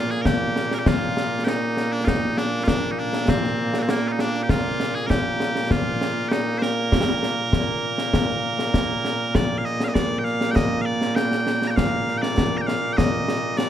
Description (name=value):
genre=scottish traditional, Scottish pipe music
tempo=99 BPM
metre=4/4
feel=straight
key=Bb major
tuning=A4 = 440 Hz
part: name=loud bright bagpipes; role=melody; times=0.0-13.7 s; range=Bb2 to Bb5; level=-23 LUFS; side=right 1 dB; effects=none
part: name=concert snare drum and concert bass drum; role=drums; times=0.1-13.7 s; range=none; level=-23 LUFS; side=left 1 dB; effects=none
room=light reverb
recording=dark, warm production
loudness=-20 LUFS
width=side -10 dB against mid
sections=0.0-9.3 A section; 9.3-13.7 B section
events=none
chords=none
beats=0.26 0.86 1.47 | 2.07 2.68 3.29 3.89 | 4.50 5.10 5.71 6.32 | 6.92 7.53 8.13 8.74 | 9.35 9.95 10.56 11.16 | 11.77 12.38 12.98 13.59